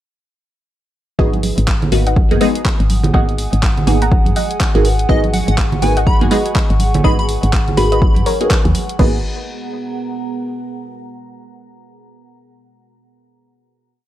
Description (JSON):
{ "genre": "deep house", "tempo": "123 BPM", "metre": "4/4", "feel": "swing 60% on 16ths", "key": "G# minor", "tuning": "A4 = 440 Hz", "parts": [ { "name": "soft round pluck", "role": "melody", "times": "1.2-9.2 s", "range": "A#4 to A#5", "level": "-24 LUFS", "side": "equal", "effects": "wide subtle chorus, tape echo" }, { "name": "dark analog pad", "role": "sustained chords", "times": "2.0-9.2 s", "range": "F#5 to D#6", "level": "-29 LUFS", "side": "left 1 dB", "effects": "chorus, sidechain pumping" }, { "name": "filtered dub chord stab", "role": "stabs", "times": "1.2-9.2 s", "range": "G#3 to B4", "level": "-19 LUFS", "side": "equal", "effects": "phaser, analog chorus, cassette tape, sidechain pumping, tape echo" }, { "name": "woody FM bass", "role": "bass", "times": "1.2-9.2 s", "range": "G#1 to G#2", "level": "-17 LUFS", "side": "equal", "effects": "sidechain pumping" }, { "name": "electronic kick drum", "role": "drums", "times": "1.2-9.1 s", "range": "none", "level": "-16 LUFS", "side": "equal", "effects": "none" }, { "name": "deep house drum kit", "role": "drums", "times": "1.3-9.1 s", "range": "crash cymbal, handclaps, hi-hat", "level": "-24 LUFS", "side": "equal", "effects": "none" }, { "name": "congas", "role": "percussion", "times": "1.3-8.7 s", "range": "none", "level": "-22 LUFS", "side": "right 4 dB", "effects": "sidechain pumping on perc" }, { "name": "deep dark ambient pad", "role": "texture", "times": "2.9-10.9 s", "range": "B3 to A#5", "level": "-28 LUFS", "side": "right 2 dB", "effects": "chorus, built-in reverb, sidechain pumping" }, { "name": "plucky unison lead", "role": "melody", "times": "5.1-8.3 s", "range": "D#5 to B5", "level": "-24 LUFS", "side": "equal", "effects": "tape echo" } ], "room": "light reverb, digital ambience", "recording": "none", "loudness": "-13 LUFS", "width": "side -13 dB against mid", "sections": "1.2-9.0 drop; 9.0-10.9 final chord", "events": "drop 1.2-9.0", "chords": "1.2 G#m9", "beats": "| 1.19 1.68 2.16 2.65 | 3.14 3.63 4.12 4.60 | 5.09 5.58 6.07 6.55 | 7.04 7.53 8.02 8.51 | 8.99 9.48 9.97 10.46" }